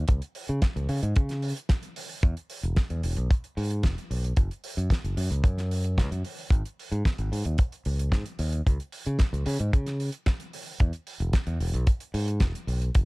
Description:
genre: nu-disco, nu disco.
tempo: 112 BPM.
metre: 4/4.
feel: straight.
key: unclear.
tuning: A4 = 440 Hz.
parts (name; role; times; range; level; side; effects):
fingered electric bass; bass; 0.0-13.1 s; E1 to C#3; -27 LUFS; equal; none.
damped 70s drum kit; drums; 0.1-13.1 s; hi-hat, snare drum; -36 LUFS; right 1 dB; none.
kick drum; drums; 0.1-13.1 s; none; -22 LUFS; equal; none.
room: little or no reverb.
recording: dark, warm production.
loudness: -25 LUFS.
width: side -25 dB against mid.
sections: 0.0-13.1 A section.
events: none.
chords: none.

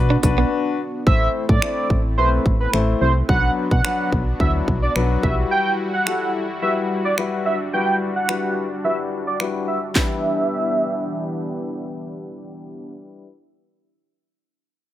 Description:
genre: dance-pop.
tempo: 108 BPM.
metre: 4/4.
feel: straight.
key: E minor.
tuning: A4 = 438 Hz.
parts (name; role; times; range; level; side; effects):
warm grand piano; accompaniment; 0.0-13.3 s; F#3 to D5; -25 LUFS; left 5 dB; sidechain pumping, low-pass filter.
soft supersaw; sustained chords; 0.0-12.9 s; E3 to G4; -29 LUFS; equal; sidechain pumping, low-pass filter.
solid FM bass; bass; 0.0-5.4 s; A1 to B2; -20 LUFS; equal; sidechain pumping.
direct-recorded clean electric guitar; riff; 0.1-0.5 s; B3 to D4; -24 LUFS; right 7 dB; lush chorus.
house drum kit; drums; 0.2-10.1 s; finger snaps, handclaps, hi-hat, kick drum, snare drum; -20 LUFS; equal; none.
octave-doubled lead; melody; 1.1-11.6 s; B4 to G5; -23 LUFS; right 2 dB; chorus, sidechain pumping, low-pass filter.
room: little or no reverb.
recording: none.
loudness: -18 LUFS.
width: side -13 dB against mid.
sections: 0.0-1.1 A section; 1.1-10.0 B section; 10.0-12.2 C section.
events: break 0.5-1.1.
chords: 0.0 Bm; 1.1 Am; 3.3 Bm; 5.2 Emadd9/B; 10.0 Em7.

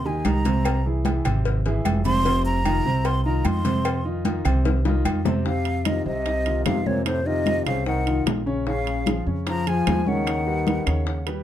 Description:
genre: Afro-Cuban jazz.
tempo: 150 BPM.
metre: 4/4.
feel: straight.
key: F minor.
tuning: A4 = 439 Hz.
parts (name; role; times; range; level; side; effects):
breathy mellow silver concert flute; melody; 0.0-11.3 s; C5 to C6; -27 LUFS; right 1 dB; none.
upright bass; bass; 0.0-11.4 s; F1 to F2; -25 LUFS; equal; none.
congas; percussion; 0.0-11.4 s; none; -28 LUFS; right 1 dB; none.
warm concert grand piano; accompaniment; 0.1-11.4 s; C3 to Db5; -26 LUFS; equal; none.
agogo bells and timbales; percussion; 0.2-11.4 s; none; -32 LUFS; right 2 dB; none.
claves; percussion; 0.2-11.1 s; none; -40 LUFS; left 4 dB; none.
cowbell and bongos; percussion; 0.3-11.4 s; none; -30 LUFS; left 5 dB; none.
brilliant trombone; second line; 5.5-11.3 s; A2 to F3; -29 LUFS; left 5 dB; none.
room: light reverb.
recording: dark, warm production.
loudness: -20 LUFS.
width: side -11 dB against mid.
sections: 0.0-5.5 A section; 5.5-11.4 B section.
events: flute solo 0.0-5.5; drum fill 4.7-5.5.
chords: 0.0 Abmaj9; 0.7 Caug; 2.3 F5; 8.7 Bbm7; 10.3 Eb7alt.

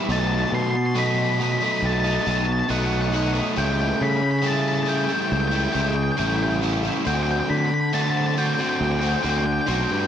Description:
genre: post-rock.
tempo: 69 BPM.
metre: 4/4.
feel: straight.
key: unclear.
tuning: A4 = 440 Hz.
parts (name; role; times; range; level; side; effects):
overdriven electric guitar; riff; 0.0-10.1 s; B2 to F#4; -24 LUFS; equal; wide subtle chorus.
octave-fuzz lead guitar; melody; 0.1-10.1 s; F#5 to C6; -26 LUFS; left 2 dB; distortion, diffuse ambient delay.
fuzz fingered electric bass; bass; 0.1-10.1 s; A1 to D3; -24 LUFS; equal; overdrive.
room: moderate lush hall reverb, RT60 2.2 s.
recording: dreamy mix soaked in reverb.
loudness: -20 LUFS.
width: side -9 dB against mid.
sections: 0.0-10.1 A section.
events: none.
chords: 0.1 B7; 3.6 A7/C#; 7.1 D7sus4.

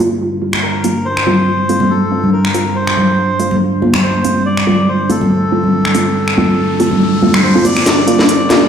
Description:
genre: deep dubstep.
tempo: 141 BPM.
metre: 4/4.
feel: swing 55% on 16ths, half-time.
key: unclear.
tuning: A4 = 440 Hz.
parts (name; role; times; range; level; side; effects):
deep dark ambient pad; sustained chords; 0.0-8.7 s; G3 to D4; -18 LUFS; right 2 dB; chorus, built-in reverb.
filtered dub chord stab; stabs; 0.0-8.6 s; G3 to F4; -17 LUFS; right 1 dB; phaser, vintage 12-bit sampler grit, dub echo.
garage drum kit; drums; 0.5-8.6 s; finger snaps, hi-hat, snare drum; -16 LUFS; equal; none.
melodica; melody; 0.6-8.7 s; A4 to D5; -18 LUFS; left 1 dB; dub echo.
congas; percussion; 1.3-7.8 s; none; -16 LUFS; left 1 dB; none.
riser; sound effects; 5.4-8.7 s; none; -27 LUFS; equal; none.
room: wet lush hall reverb, RT60 2.2 s.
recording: played on a big sound system in a bare room, large studio reverb.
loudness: -11 LUFS.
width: side -8 dB against mid.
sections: 0.0-7.9 A section.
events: riser 5.4-7.9; drum fill 7.9-8.7.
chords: 0.0 Gm7; 1.1 F; 7.9 Gm7.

